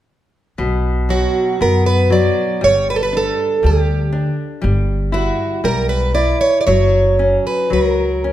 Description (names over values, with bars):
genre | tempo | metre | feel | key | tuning
fado-style ballad | 59 BPM | 2/4 | rubato | B harmonic minor | A4 = 442 Hz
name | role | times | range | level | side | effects
nylon-string guitar | accompaniment | 0.6-8.3 s | B2 to E4 | -20 LUFS | left 3 dB | none
upright bass | bass | 0.6-8.3 s | F#1 to F#2 | -18 LUFS | equal | none
picked plugged-in twelve-string acoustic guitar | melody | 1.1-8.3 s | F#4 to D5 | -16 LUFS | right 3 dB | none
room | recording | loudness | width
light reverb | none | -14 LUFS | side -12 dB against mid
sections
0.6-8.3 A section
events
none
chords
0.6 B5; 2.6 G5; 4.6 Em/G; 6.7 F#